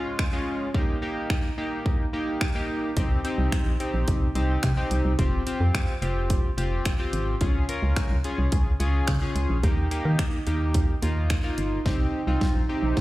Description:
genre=dance-pop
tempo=108 BPM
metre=4/4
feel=straight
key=unclear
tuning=A4 = 440 Hz
part: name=chorused polysynth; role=accompaniment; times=0.0-13.0 s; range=Ab3 to Bb4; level=-29 LUFS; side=left 1 dB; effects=slapback echo
part: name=pop drum kit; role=drums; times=0.2-13.0 s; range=finger snaps, hi-hat, kick drum, snare drum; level=-26 LUFS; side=equal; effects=none
part: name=organ-like FM bass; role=bass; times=3.0-13.0 s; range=F1 to Eb3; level=-24 LUFS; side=equal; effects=sidechain pumping
part: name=granular cloud pad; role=sustained chords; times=12.2-13.0 s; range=C3 to G4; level=-31 LUFS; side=right 5 dB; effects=built-in reverb, sidechain pumping
room=little or no reverb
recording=live gig heard through the venue's PA, club reverb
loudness=-23 LUFS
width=side -17 dB against mid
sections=0.0-11.9 A section; 11.9-13.0 B section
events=build-up 11.9-13.0; drum fill 11.9-13.0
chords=0.0 Db; 0.7 Eb; 3.0 Cm; 5.2 Fsus2; 7.4 Db; 9.6 Eb; 11.9 Cm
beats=0.19 | 0.75 1.30 1.86 2.41 | 2.97 3.52 4.08 4.63 | 5.19 5.75 6.30 6.86 | 7.41 7.97 8.52 9.08 | 9.63 10.19 10.75 11.30 | 11.86 12.41 12.97

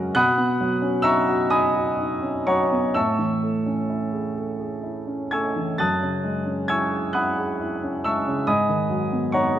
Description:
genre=classical, impressionist solo piano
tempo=41-47 BPM (dotted quarters)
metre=6/8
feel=rubato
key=unclear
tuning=A4 = 441 Hz
part: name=warm baby grand piano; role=solo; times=0.0-9.6 s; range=F#2 to A6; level=-20 LUFS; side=equal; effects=none
room=moderate concert hall reverb, RT60 2.3 s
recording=none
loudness=-20 LUFS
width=side -11 dB against mid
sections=0.0-9.6 A section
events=none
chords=0.1 Badd9; 3.0 Amaj7; 5.8 F#m9; 8.5 G#m7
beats=| 0.14 1.52 | 2.96 4.38 | 5.80 7.14 | 8.47

